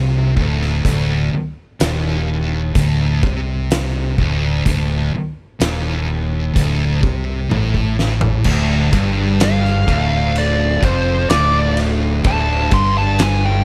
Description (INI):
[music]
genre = stoner and doom metal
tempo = 63 BPM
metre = 4/4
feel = straight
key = D phrygian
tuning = A4 = 439 Hz
[part]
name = thick fuzz guitar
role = riff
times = 0.0-13.6 s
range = D2 to C3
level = -25 LUFS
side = equal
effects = distortion
[part]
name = thick fuzz guitar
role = riff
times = 0.0-13.6 s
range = D2 to C3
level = -25 LUFS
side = equal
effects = distortion
[part]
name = fingered electric bass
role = bass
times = 0.0-13.6 s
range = D1 to C2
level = -22 LUFS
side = equal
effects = overdrive
[part]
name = oversized low-tuned drum kit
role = drums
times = 0.4-13.4 s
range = crash cymbal, hi-hat, kick drum, ride cymbal, snare drum, toms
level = -23 LUFS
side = equal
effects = none
[part]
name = crunchy overdriven guitar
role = riff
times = 8.5-13.6 s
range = D2 to G2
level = -25 LUFS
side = equal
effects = none
[part]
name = fuzz lead guitar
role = melody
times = 9.4-13.6 s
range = C5 to C6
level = -21 LUFS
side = equal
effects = wah, distortion, slapback echo
[sound]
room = small room ambience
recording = none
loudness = -17 LUFS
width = mono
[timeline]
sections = 0.0-8.5 A section; 8.5-13.6 B section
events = drum fill 7.5-8.5; lead electric guitar solo 8.5-13.6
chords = 0.0 D5; 8.5 Dm